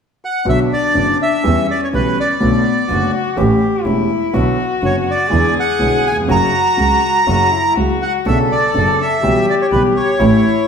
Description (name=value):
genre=tango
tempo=124 BPM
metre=4/4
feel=rubato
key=B minor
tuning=A4 = 440 Hz
part: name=bandoneon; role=melody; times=0.2-10.7 s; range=B4 to A#5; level=-16 LUFS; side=right 1 dB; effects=none
part: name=warm cello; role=second line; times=0.5-10.7 s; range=B3 to A4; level=-18 LUFS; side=left 4 dB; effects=none
part: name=warm concert grand piano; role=accompaniment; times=0.5-10.4 s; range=E1 to G4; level=-18 LUFS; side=equal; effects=none
part: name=clear double bass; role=bass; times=0.5-10.4 s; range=E1 to E2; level=-20 LUFS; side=right 2 dB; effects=none
room=wet large studio reverb, RT60 1.3 s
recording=band playing live in one room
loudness=-12 LUFS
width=side -6 dB against mid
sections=0.5-10.7 A section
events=none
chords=0.5 Bm; 1.4 Em; 2.4 Bm7; 3.4 A7; 4.3 Bm; 5.3 E7; 6.3 F#; 8.3 Bmadd9; 9.2 Em/B